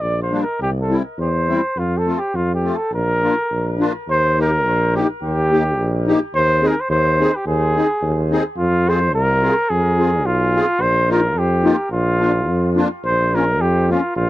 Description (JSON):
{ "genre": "alpine folk, alpine dance band", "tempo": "107 BPM", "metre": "2/4", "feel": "swing 54% on 8ths", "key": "Bb major, Eb major from 4.1 s", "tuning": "A4 = 443 Hz", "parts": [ { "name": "clear flugelhorn", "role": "melody", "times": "0.0-14.3 s", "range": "F4 to D5", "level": "-19 LUFS", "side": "equal", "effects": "tape echo" }, { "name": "warm tuba", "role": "bass", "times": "0.0-14.3 s", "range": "Bb1 to F2", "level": "-20 LUFS", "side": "equal", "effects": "none" }, { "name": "musette accordion", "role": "accompaniment", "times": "0.3-14.0 s", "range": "G3 to Ab4", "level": "-18 LUFS", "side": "left 2 dB", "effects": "none" } ], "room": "little or no reverb", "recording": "dry, close 1970s-style studio recording", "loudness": "-15 LUFS", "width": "side -16 dB against mid", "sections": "0.0-4.1 A section; 4.1-14.3 B section", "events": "none", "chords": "0.0 Gm; 0.6 C; 1.8 F; 2.9 Bb; 4.1 Eb; 6.3 Ab/Eb; 8.6 Fm; 10.8 Bbsus4; 11.9 Bb; 13.0 Bbm" }